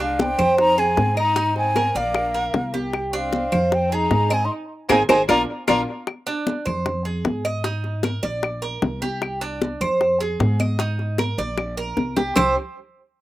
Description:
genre	latin, Cuban son and guajira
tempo	153 BPM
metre	4/4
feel	straight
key	C minor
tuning	A4 = 444 Hz
part	breathy mellow concert flute	melody	0.0-5.8 s	F5 to C6	-22 LUFS	left 1 dB	slapback echo
part	warm chamber violin section	second line	0.0-5.8 s	Ab3 to F4	-27 LUFS	left 1 dB	slapback echo
part	Cuban tres	arpeggios	0.0-12.6 s	C4 to Eb5	-23 LUFS	right 2 dB	none
part	upright bass	bass	0.0-12.5 s	Ab1 to Ab2	-26 LUFS	equal	none
part	congas	percussion	0.0-12.5 s	none	-28 LUFS	left 2 dB	slapback echo
part	bongos	percussion	0.2-12.5 s	none	-25 LUFS	left 5 dB	slapback echo
part	claves	percussion	0.4-12.5 s	none	-30 LUFS	left 5 dB	none
room	little or no reverb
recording	recorded outdoors, with no room sound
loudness	-19 LUFS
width	side -15 dB against mid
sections	0.0-6.1 A section; 6.1-12.4 B section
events	band accent 4.5-6.1; drum fill 5.3-6.1, 11.6-12.4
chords	0.0 Csus2; 0.6 Fm7; 1.4 Abadd9; 2.1 Bb; 2.9 Csus2; 3.7 Fm7; 4.5 Abadd9; 5.3 Bb; 6.1 Csus2; 6.9 Fm7; 7.6 Absus2; 8.4 Bb; 9.2 Csus2; 10.0 Fm7; 10.8 Absus2; 11.6 Bb; 12.4 C5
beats	0.19 0.58 0.97 | 1.36 1.75 2.15 2.54 | 2.93 3.32 3.72 4.11 | 4.50 4.89 5.29 5.68 | 6.07 6.47 6.86 7.25 | 7.65 8.04 8.43 8.83 | 9.22 9.61 10.01 10.40 | 10.79 11.19 11.58 11.98 | 12.37

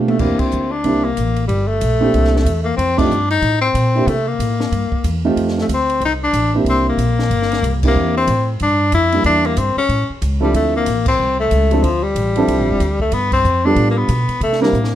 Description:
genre	jazz, small-group swing and bop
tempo	186 BPM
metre	4/4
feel	swing 62% on 8ths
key	C mixolydian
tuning	A4 = 440 Hz
part	warm upright piano	accompaniment	0.0-14.7 s	Bb2 to Bb4	-18 LUFS	right 3 dB	none
part	upright bass	bass	0.0-14.9 s	F1 to C3	-19 LUFS	equal	none
part	clear tenor saxophone	melody	0.1-14.9 s	F3 to E4	-17 LUFS	left 3 dB	plate reverb
part	compact cocktail drum kit	drums	0.1-14.9 s	crash cymbal, hi-hat, kick drum, ride cymbal, snare drum, toms	-27 LUFS	equal	none
room	moderate studio ambience, RT60 0.5 s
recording	dark, warm production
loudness	-14 LUFS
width	side -12 dB against mid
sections	0.2-14.9 A section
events	drum fill 0.0, 14.7; band accent 0.4, 2.9, 7.8, 11.0, 13.3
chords	0.2 C7; 2.8 F7; 4.1 C7; 5.4 F7; 6.7 C7; 9.2 Em7b5; 9.9 A; 10.5 Dm7; 13.1 G7; 14.4 C7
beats	| 0.20 0.52 0.84 1.17 | 1.49 1.81 2.14 2.46 | 2.79 3.11 3.43 3.75 | 4.08 4.40 4.72 5.05 | 5.37 5.69 6.02 6.34 | 6.66 6.98 7.31 7.63 | 7.95 8.28 8.60 8.92 | 9.24 9.57 9.89 10.21 | 10.54 10.86 11.18 11.51 | 11.83 12.15 12.48 12.80 | 13.12 13.45 13.77 14.09 | 14.41 14.74

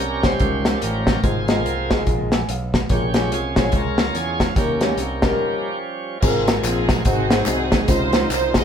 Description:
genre	uptempo gospel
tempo	144 BPM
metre	4/4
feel	swing 60% on 8ths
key	Ab major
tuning	A4 = 440 Hz
part	bright tonewheel organ	sustained chords	0.0-8.6 s	Db3 to C5	-26 LUFS	right 3 dB	fast rotary speaker, overdrive
part	modern bright picked electric bass	bass	0.0-8.6 s	Ab1 to Fb2	-25 LUFS	right 1 dB	none
part	warm concert grand piano	accompaniment	0.2-8.5 s	Ab2 to Ab5	-24 LUFS	left 2 dB	none
part	modern studio drum kit	drums	0.2-8.6 s	crash cymbal, hi-hat, kick drum, snare drum	-20 LUFS	equal	none
part	tambourine and handclaps	percussion	6.2-8.6 s	none	-32 LUFS	left 5 dB	none
part	dark studio string section	melody	6.6-8.6 s	C4 to Eb5	-22 LUFS	right 2 dB	none
room	moderate stone room reverb, RT60 1.3 s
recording	band playing live in one room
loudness	-17 LUFS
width	side -8 dB against mid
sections	0.0-6.2 A section; 6.2-8.6 B section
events	tonewheel organ solo 0.0-6.2; grand piano fill 2.1-2.9; break 5.4-6.2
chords	0.0 Eb7; 1.2 Ab6; 2.9 Bbm7; 4.6 Eb7; 6.2 Ab69; 7.1 Ab7; 7.9 Dbmaj9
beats	0.40 0.82 | 1.23 1.65 2.07 2.48 | 2.90 3.32 3.73 4.15 | 4.57 4.98 5.40 5.82 | 6.23 6.65 7.06 7.47 | 7.89 8.30

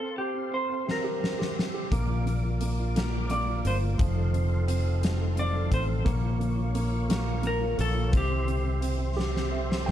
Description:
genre	six-eight pop ballad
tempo	58 BPM (dotted quarters)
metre	6/8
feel	straight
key	F major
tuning	A4 = 440 Hz
part	clean lap steel guitar	melody	0.0-9.5 s	G4 to D5	-32 LUFS	left 1 dB	ping-pong delay
part	warm upright piano	accompaniment	0.0-9.9 s	F3 to G5	-33 LUFS	right 4 dB	none
part	tonewheel organ	sustained chords	0.0-9.9 s	Bb3 to D6	-39 LUFS	left 1 dB	chorus vibrato, slow rotary speaker
part	huge arena drum kit	drums	0.9-9.9 s	hi-hat, kick drum, snare drum	-31 LUFS	equal	none
part	fretless electric bass	bass	1.9-9.9 s	F1 to C2	-27 LUFS	left 1 dB	ensemble chorus
room	small room ambience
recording	dark, warm production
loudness	-25 LUFS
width	side -11 dB against mid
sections	0.0-9.9 A section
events	drum fill 0.9-1.9, 9.2-9.9; upright piano fill 9.2-9.9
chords	0.0 F/C; 0.9 C; 1.9 Bb; 4.0 F7; 6.1 Bbm; 8.1 C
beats	0.87 | 1.92 2.95 | 3.99 5.03 | 6.06 7.09 | 8.13 9.18

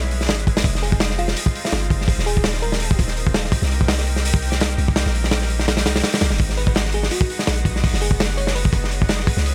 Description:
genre	drum and bass, jungle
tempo	167 BPM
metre	4/4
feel	swing 55% on 16ths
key	unclear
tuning	A4 = 439 Hz
part	lush unison pad	sustained chords	0.0-9.5 s	Ab3 to G4	-33 LUFS	equal	chorus
part	long sustained 808-style bass	bass	0.0-9.5 s	Eb1 to Db2	-24 LUFS	equal	none
part	crunchy breakbeat drum kit	drums	0.1-9.5 s	hi-hat, kick drum, snare drum	-22 LUFS	equal	none
part	bell-like FM electric piano	melody	0.8-3.0, 6.6-8.8 s	F4 to Db5	-32 LUFS	equal	chorus, phaser, dub echo
room	small room ambience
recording	none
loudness	-20 LUFS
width	mono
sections	0.0-9.5 A section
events	none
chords	0.0 Dbm7; 0.6 Fm7; 3.5 Cm7; 6.4 Abm7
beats	0.29 | 0.65 1.01 1.37 1.73 | 2.08 2.44 2.80 3.16 | 3.52 3.88 4.24 4.60 | 4.96 5.32 5.68 6.04 | 6.40 6.76 7.12 7.47 | 7.83 8.19 8.55 8.91 | 9.27

